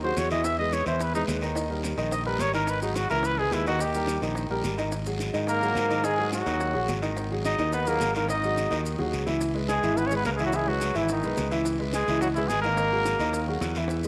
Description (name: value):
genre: Afro-Cuban jazz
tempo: 214 BPM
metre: 4/4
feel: straight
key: G# minor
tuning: A4 = 439 Hz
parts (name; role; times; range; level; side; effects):
- breathy trumpet; melody; 0.0-13.6 s; D#4 to E5; -30 LUFS; equal; none
- warm grand piano; accompaniment; 0.0-14.1 s; D#3 to E5; -32 LUFS; equal; none
- modern bright fingered electric bass; bass; 0.0-14.1 s; G#1 to G#2; -33 LUFS; equal; none
- bongos; percussion; 0.0-14.1 s; none; -41 LUFS; equal; none
- guiro; percussion; 0.2-14.1 s; none; -42 LUFS; equal; none
- maracas; percussion; 0.2-14.1 s; none; -46 LUFS; equal; none
- brilliant trombone; second line; 5.5-13.6 s; D#3 to D#4; -36 LUFS; equal; none
room: moderate echo chamber reverb, RT60 1.8 s, small room reverb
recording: none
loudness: -27 LUFS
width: mono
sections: 0.0-4.9 A section; 4.9-14.1 B section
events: trumpet solo 0.0-4.9; drum fill 8.7-9.4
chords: 0.4 Emaj7; 1.6 D#; 2.7 G#5; 3.2 C#m9; 3.8 D#; 4.9 G#sus2; 9.4 C#m9; 12.8 G#sus2